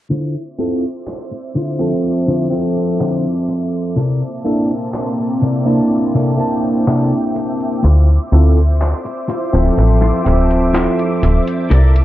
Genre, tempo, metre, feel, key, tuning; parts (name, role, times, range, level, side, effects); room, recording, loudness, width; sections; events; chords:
vaporwave; 62 BPM; 4/4; straight; D minor; A4 = 440 Hz
lush unison pad; sustained chords; 1.1-12.0 s; Bb3 to D6; -24 LUFS; equal; chorus, phaser
clean electric guitar; riff; 0.1-12.0 s; C3 to D5; -20 LUFS; left 2 dB; wide subtle chorus, low-pass filter
detuned 8-bit digital drum machine; drums; 0.1-12.0 s; handclaps, hi-hat; -28 LUFS; equal
overdriven tine electric piano; accompaniment; 0.6-11.7 s; F3 to A5; -17 LUFS; equal; analog chorus, tape echo
slap-like FM bass; bass; 7.8-12.0 s; D1 to D2; -11 LUFS; equal
digital ambience; dark, warm production, cassette tape, low-pass filter; -13 LUFS; side -14 dB against mid
0.1-12.0 A section
filter sweep on clean electric guitar 0.1-12.0; filter sweep 0.1-12.0
0.1 Dm9; 4.0 C13; 7.8 Dm9